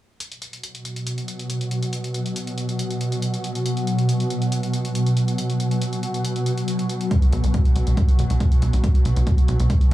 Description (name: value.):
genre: driving peak-time techno.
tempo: 139 BPM.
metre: 4/4.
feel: straight.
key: unclear.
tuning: A4 = 440 Hz.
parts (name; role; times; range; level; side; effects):
swarming drone; drone; 0.9-9.9 s; B2 to F#3; -23 LUFS; equal; built-in reverb, sidechain pumping, cassette tape.
electronic hi-hat; drums; 0.2-9.9 s; none; -34 LUFS; left 1 dB; sidechain pumping on hats, cassette tape.
electronic kick drum; drums; 7.1-9.9 s; none; -17 LUFS; equal; overdrive, cassette tape.
tight sequencer bass; bass; 7.3-9.9 s; F#1 to B1; -19 LUFS; equal; sidechain pumping.
room: light reverb.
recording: home recording on cassette, small room ambience.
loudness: -19 LUFS.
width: side -15 dB against mid.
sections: 0.2-9.9 A section.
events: none.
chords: 0.2 B5.